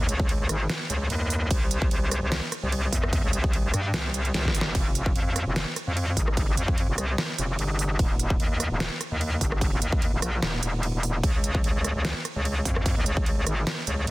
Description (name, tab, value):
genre	heavy wobble dubstep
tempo	148 BPM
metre	4/4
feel	swing 54% on 16ths, half-time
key	unclear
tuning	A4 = 440 Hz
part	metallic wobble bass	bass	0.0-14.1 s	Eb1 to G2	-26 LUFS	equal	chorus, overdrive
part	dubstep drum kit	drums	0.1-14.1 s	hi-hat, ride cymbal, rim click, snare drum	-30 LUFS	right 1 dB	none
part	electronic kick drum	drums	0.2-13.2 s	none	-25 LUFS	equal	overdrive
room	little or no reverb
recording	dense, heavily limited modern master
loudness	-23 LUFS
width	side -20 dB against mid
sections	0.0-14.1 A section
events	drum fill 4.3-4.7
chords	none